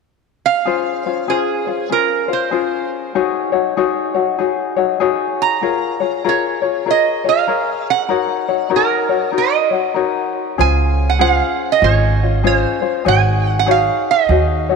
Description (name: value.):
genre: Hawaiian.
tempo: 97 BPM.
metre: 4/4.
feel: swing 63% on 8ths.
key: Db major.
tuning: A4 = 439 Hz.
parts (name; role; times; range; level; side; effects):
lap resonator guitar; melody; 0.5-14.8 s; Ab4 to Bb5; -17 LUFS; right 10 dB; none.
tenor ukulele; accompaniment; 0.7-14.8 s; Db4 to Db5; -18 LUFS; left 10 dB; none.
upright bass; bass; 10.6-14.8 s; Ab1 to Eb2; -16 LUFS; right 2 dB; none.
room: moderate plate reverb, RT60 3.2 s.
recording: 1960s-style stereo with parts hard left and right.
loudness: -14 LUFS.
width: side -4 dB against mid.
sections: 0.7-10.6 A section; 10.6-14.8 B section.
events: none.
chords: 0.0 N.C.; 0.7 Dbmaj7; 3.2 Ab7sus4; 5.6 Bbm7; 8.1 Ebm7; 10.6 Dbmaj7; 13.1 Ab7sus4.